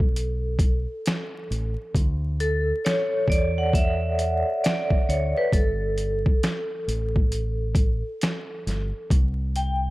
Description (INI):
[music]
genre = lo-fi hip hop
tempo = 67 BPM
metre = 4/4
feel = swing 64% on 16ths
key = unclear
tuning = A4 = 440 Hz
[part]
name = vibraphone with medium hard mallets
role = accompaniment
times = 0.0-9.9 s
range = A4 to G5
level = -26 LUFS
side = equal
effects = cassette tape, low-pass filter
[part]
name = deep dub fingered electric bass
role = bass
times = 0.0-9.9 s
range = G1 to E2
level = -26 LUFS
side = equal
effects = none
[part]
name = boom bap sampler-style drum kit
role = drums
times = 0.0-9.8 s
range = finger snaps, hi-hat, kick drum, snare drum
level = -23 LUFS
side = equal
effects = overdrive
[sound]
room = light reverb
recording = vinyl crackle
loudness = -22 LUFS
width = side -18 dB against mid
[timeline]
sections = 0.0-9.9 A section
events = vibraphone solo 0.0-9.9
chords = 0.0 Asus2; 1.9 Dmaj9; 5.5 Gsus2; 9.1 C5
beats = 0.15 1.04 | 1.94 2.84 3.73 4.63 | 5.52 6.42 7.31 8.21 | 9.10